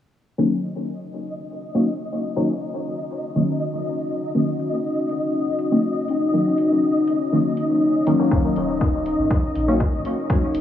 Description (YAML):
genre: dub techno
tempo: 121 BPM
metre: 4/4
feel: straight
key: Eb minor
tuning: A4 = 436 Hz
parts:
  - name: dark analog pad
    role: sustained chords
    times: 1.2-10.6 s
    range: Db4 to Bb4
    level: -23 LUFS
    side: left 1 dB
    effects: chorus, sidechain pumping
  - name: deep mellow chord stab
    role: stabs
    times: 0.4-10.4 s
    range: Eb3 to Db4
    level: -22 LUFS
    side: left 1 dB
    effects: chorus, phaser, sidechain pumping, dub echo
  - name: flickering grainy texture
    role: texture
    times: 1.0-10.6 s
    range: Eb5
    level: -30 LUFS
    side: left 1 dB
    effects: built-in reverb, sidechain pumping
  - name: electronic hi-hat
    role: drums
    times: 0.6-10.6 s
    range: none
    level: -54 LUFS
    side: left 1 dB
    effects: low-pass filter on hats, low-pass filter on room, dub echo
  - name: warm sub bass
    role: bass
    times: 8.3-10.6 s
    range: Eb1 to Bb1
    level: -29 LUFS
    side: equal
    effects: sidechain pumping
  - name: electronic kick drum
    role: drums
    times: 8.3-10.4 s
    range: none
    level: -20 LUFS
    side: equal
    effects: none
room: moderate huge ambient reverb, RT60 6.1 s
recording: low-pass filter, studio ambience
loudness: -19 LUFS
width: side -10 dB against mid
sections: 0.4-10.6 A section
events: filter sweep on drum 0.4-10.6; filter sweep on synth stab 0.4-10.6; filter sweep 0.4-10.6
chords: 0.4 Ebm7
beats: | 0.38 0.88 1.37 1.87 | 2.37 2.86 3.36 3.85 | 4.35 4.84 5.34 5.84 | 6.33 6.83 7.32 7.82 | 8.31 8.81 9.31 9.80 | 10.30